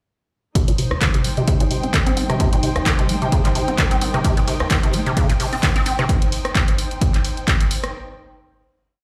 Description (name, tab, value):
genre	acid house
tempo	130 BPM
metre	4/4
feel	swing 55% on 16ths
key	C minor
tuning	A4 = 440 Hz
part	dark analog pad	sustained chords	1.0-6.1 s	G3 to G5	-32 LUFS	equal	chorus, sidechain pumping
part	acid bass, square	riff	0.6-6.0 s	C2 to C4	-25 LUFS	equal	overdrive, analog chorus, sidechain pumping, dub echo
part	electronic kick drum	drums	0.6-7.6 s	none	-21 LUFS	equal	none
part	punchy analog drum machine	drums	0.6-7.9 s	handclaps, hi-hat, rim click	-26 LUFS	equal	none
part	dark symphonic string section	texture	0.6-7.9 s	Eb4 to G5	-31 LUFS	equal	sidechain pumping
part	modern studio drum kit	drums	4.2-6.0 s	hi-hat, ride cymbal, snare drum	-39 LUFS	equal	none
room	light reverb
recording	played on a big sound system in a bare room, large studio reverb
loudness	-19 LUFS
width	mono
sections	0.6-7.9 groove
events	filter sweep on acid bass 0.6-6.1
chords	0.6 Cm